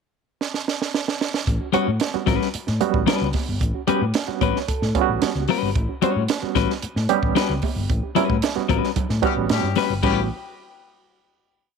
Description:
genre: funk.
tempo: 112 BPM.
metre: 4/4.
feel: straight.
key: A mixolydian.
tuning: A4 = 440 Hz.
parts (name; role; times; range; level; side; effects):
compact cocktail drum kit; drums; 0.4-10.2 s; crash cymbal, hi-hat, kick drum, snare drum; -24 LUFS; right 3 dB; none.
hollow-body short-scale fingered electric bass; bass; 1.5-10.3 s; G1 to A2; -25 LUFS; left 1 dB; none.
congas; percussion; 1.5-10.3 s; none; -33 LUFS; right 12 dB; none.
barky reed electric piano; stabs; 1.6-10.3 s; G3 to C#5; -24 LUFS; right 12 dB; overdrive, medium tremolo.
clean electric guitar; accompaniment; 1.7-10.2 s; G3 to C#5; -23 LUFS; left 15 dB; none.
warm horn section; second line; 9.2-10.2 s; E3 to G4; -28 LUFS; left 13 dB; none.
room: light reverb, studio ambience.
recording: 1960s-style stereo with parts hard left and right.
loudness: -19 LUFS.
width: side -5 dB against mid.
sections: 0.0-1.5 pickup bar; 1.5-10.0 groove; 10.0-11.8 final chord.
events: drum fill 0.4-1.5; reed electric piano fill 4.1-5.8; band accent 7.9-10.0.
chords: 0.0 N.C.; 1.5 A13.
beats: 0.41 0.94 | 1.47 2.01 2.54 3.08 | 3.61 4.15 4.68 5.22 | 5.75 6.29 6.82 7.36 | 7.89 8.43 8.96 9.50 | 10.03.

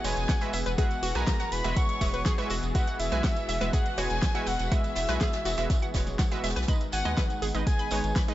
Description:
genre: progressive house.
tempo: 122 BPM.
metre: 4/4.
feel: straight.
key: unclear.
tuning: A4 = 442 Hz.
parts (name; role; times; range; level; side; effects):
soft octave-layered synth lead; melody; 0.0-8.1 s; E5 to C#6; -33 LUFS; left 1 dB; chorus, sidechain pumping, tape echo.
warm chamber violin section; second line; 0.0-8.1 s; E5 to C#6; -39 LUFS; left 1 dB; sidechain pumping, tape echo.
warm analog pad; sustained chords; 0.0-8.3 s; D#3 to G#4; -37 LUFS; equal; chorus, sidechain pumping.
wide unison pluck; stabs; 0.0-8.3 s; G#3 to G#5; -34 LUFS; right 3 dB; sidechain pumping, tape echo.
round analog bass; bass; 0.0-8.1 s; E1 to D#2; -32 LUFS; equal; sidechain pumping.
deep house drum kit; drums; 0.0-8.3 s; hi-hat, snare drum; -36 LUFS; equal; studio reverb.
jazz brush drum kit; drums; 0.0-8.3 s; hi-hat, snare drum; -42 LUFS; right 1 dB; none.
tambourine; percussion; 0.0-8.3 s; none; -42 LUFS; right 4 dB; none.
analog pluck; arpeggios; 0.3-8.2 s; F#4 to B5; -37 LUFS; equal; chorus, sidechain pumping, tape echo.
electronic kick drum; drums; 0.3-8.3 s; none; -27 LUFS; equal; overdrive, studio reverb.
room: small room ambience.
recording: nothing above 7.7 kHz.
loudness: -25 LUFS.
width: side -14 dB against mid.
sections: 0.0-8.3 A section.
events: none.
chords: 0.0 Eadd9; 6.7 G#m.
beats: 0.29 | 0.78 1.27 1.77 2.26 | 2.75 3.24 3.73 4.22 | 4.72 5.21 5.70 6.19 | 6.68 7.18 7.67 8.16.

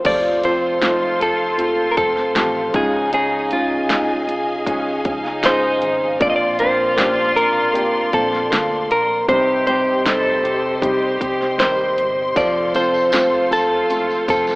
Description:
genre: pop ballad.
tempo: 78 BPM.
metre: 4/4.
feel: straight.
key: unclear.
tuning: A4 = 440 Hz.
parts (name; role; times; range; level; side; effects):
muted French horn section; second line; 0.0-14.6 s; Db4 to A4; -25 LUFS; equal; none.
warm upright piano; accompaniment; 0.0-14.6 s; G2 to Bb4; -26 LUFS; equal; none.
warm studio string section; sustained chords; 0.0-14.6 s; Bb3 to C6; -25 LUFS; equal; none.
flamenco guitar; arpeggios; 0.0-14.6 s; Bb2 to Bb4; -25 LUFS; equal; none.
hollow-body short-scale fingered electric bass; bass; 0.0-14.6 s; F1 to Eb2; -38 LUFS; equal; none.
pop drum kit; drums; 0.0-14.6 s; crash cymbal, hi-hat, kick drum, snare drum; -23 LUFS; equal; none.
direct-recorded clean electric guitar; melody; 0.1-14.6 s; F4 to Eb5; -18 LUFS; equal; spring reverb.
tambourine; percussion; 12.4-14.6 s; none; -36 LUFS; equal; none.
room: light reverb.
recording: rough home demo mix, AM radio sound.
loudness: -15 LUFS.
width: side -25 dB against mid.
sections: 0.1-14.6 A section.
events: none.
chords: 0.1 F; 2.7 Dbadd9; 6.2 Bbadd9; 9.3 Cm; 12.4 F.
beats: | 0.05 0.82 1.59 2.36 | 3.13 3.90 4.67 5.44 | 6.21 6.97 7.74 8.51 | 9.28 10.05 10.82 11.59 | 12.36 13.13 13.90.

